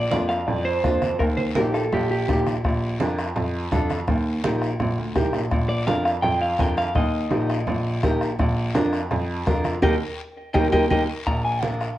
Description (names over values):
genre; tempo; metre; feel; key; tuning
latin, cumbia; 167 BPM; 4/4; straight; Bb major; A4 = 440 Hz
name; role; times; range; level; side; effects
clean electric guitar; melody; 0.0-2.4, 5.7-12.0 s; G4 to Bb5; -25 LUFS; equal; spring reverb, plate reverb
warm baby grand piano; bass; 0.0-11.8 s; Bb1 to F2; -26 LUFS; equal; none
nylon-string guitar; accompaniment; 0.1-11.9 s; Bb3 to Bb4; -25 LUFS; equal; none
bombo; percussion; 0.1-12.0 s; none; -27 LUFS; left 1 dB; none
congas; percussion; 0.1-11.8 s; none; -30 LUFS; right 3 dB; none
guiro; percussion; 0.1-12.0 s; none; -40 LUFS; left 5 dB; none
room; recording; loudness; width
moderate studio reverb, RT60 0.7 s; worn, warbling old tape, cassette tape, warbly pitch drift; -20 LUFS; side -14 dB against mid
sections
0.0-11.3 A section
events
band accent 9.8-11.3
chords
0.0 Bb; 1.2 Eb; 2.6 Bb; 4.1 Eb; 5.5 Bb; 7.0 Eb; 8.4 Bb; 9.8 Eb; 11.3 Bb